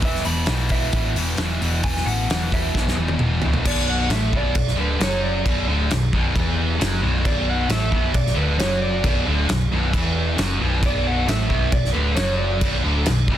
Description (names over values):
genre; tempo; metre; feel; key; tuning
quiet-loud alternative rock; 134 BPM; 4/4; straight; B minor; A4 = 435 Hz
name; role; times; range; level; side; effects
electric guitar through a small old amp; melody; 0.0-12.8 s; B4 to B5; -27 LUFS; right 2 dB; none
high-gain distorted guitar; riff; 0.0-13.4 s; B1 to A3; -23 LUFS; equal; distortion
hollow-body short-scale picked electric bass; bass; 0.0-13.4 s; B0 to B1; -23 LUFS; equal; none
loose indie drum kit; drums; 0.0-13.4 s; crash cymbal, hi-hat, kick drum, snare drum, toms; -23 LUFS; equal; none
room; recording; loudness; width
light reverb; dense, heavily limited modern master; -18 LUFS; side -11 dB against mid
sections
0.0-3.7 A section; 3.7-13.4 B section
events
drum fill 2.8-3.7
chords
0.0 E5; 3.7 Bm